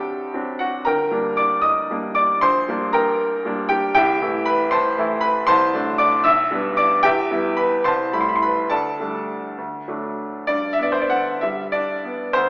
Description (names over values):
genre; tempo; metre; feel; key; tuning
classical, romantic character piece for solo piano; 64-79 BPM (dotted quarters); 6/8; rubato; G minor, G major from 4.0 s; A4 = 440 Hz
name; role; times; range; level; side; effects
bright baby grand piano; solo; 0.0-12.5 s; G1 to E6; -17 LUFS; equal; none
room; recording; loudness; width
wet recital hall reverb, RT60 1.5 s; recorded in a church or concert hall, AM radio sound; -17 LUFS; side -26 dB against mid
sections
0.0-10.5 A section; 10.5-12.5 B section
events
none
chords
0.0 D7; 0.9 Gm; 2.4 Gm/Bb; 4.0 Am7/C; 5.5 D7/C; 6.2 G/B; 7.0 Em; 7.8 Am7/C; 8.7 Dsus4; 9.6 D; 10.5 G